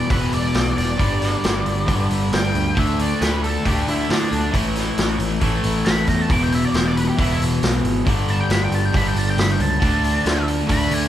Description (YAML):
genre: classic rock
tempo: 136 BPM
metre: 4/4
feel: straight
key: unclear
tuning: A4 = 439 Hz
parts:
  - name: octave-fuzz lead guitar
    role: melody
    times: 0.0-11.1 s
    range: D4 to D6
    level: -25 LUFS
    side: left 1 dB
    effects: wah, distortion
  - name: crunchy overdriven guitar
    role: riff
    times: 0.0-11.1 s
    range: E2 to D4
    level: -22 LUFS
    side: equal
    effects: none
  - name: modern bright picked electric bass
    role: bass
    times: 0.0-11.1 s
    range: E1 to A2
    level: -22 LUFS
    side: equal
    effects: none
  - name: vintage drum kit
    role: drums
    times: 0.1-11.0 s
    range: hi-hat, kick drum, snare drum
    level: -22 LUFS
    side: equal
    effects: none
room: moderate large studio reverb, RT60 1.1 s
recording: band playing live in one room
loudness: -17 LUFS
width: side -11 dB against mid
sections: 0.0-11.1 A section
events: lead electric guitar solo 0.0-11.1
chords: 0.0 E5; 1.0 G5; 2.8 D5; 4.5 A5; 6.3 E5; 8.1 G5; 9.8 D5